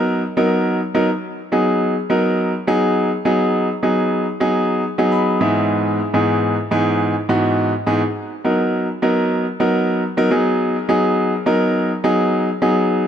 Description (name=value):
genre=pop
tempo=104 BPM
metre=4/4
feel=straight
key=G# minor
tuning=A4 = 440 Hz
part: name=clear concert grand piano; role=solo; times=0.0-13.1 s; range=G#2 to B5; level=-16 LUFS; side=equal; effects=dub echo
room=light reverb, small room ambience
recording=none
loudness=-16 LUFS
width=side -9 dB against mid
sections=0.0-10.3 A section; 10.3-13.1 B section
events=grand piano fill 4.8-5.7; build-up 10.3-13.1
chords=0.0 Bmaj7; 1.1 G#m7; 5.4 Emaj7/G#; 8.0 Bmaj7; 10.3 G#m7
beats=0.50 | 1.08 1.66 2.23 2.81 | 3.39 3.96 4.54 5.12 | 5.70 6.27 6.85 7.43 | 8.00 8.58 9.16 9.73 | 10.31 10.89 11.46 12.04 | 12.62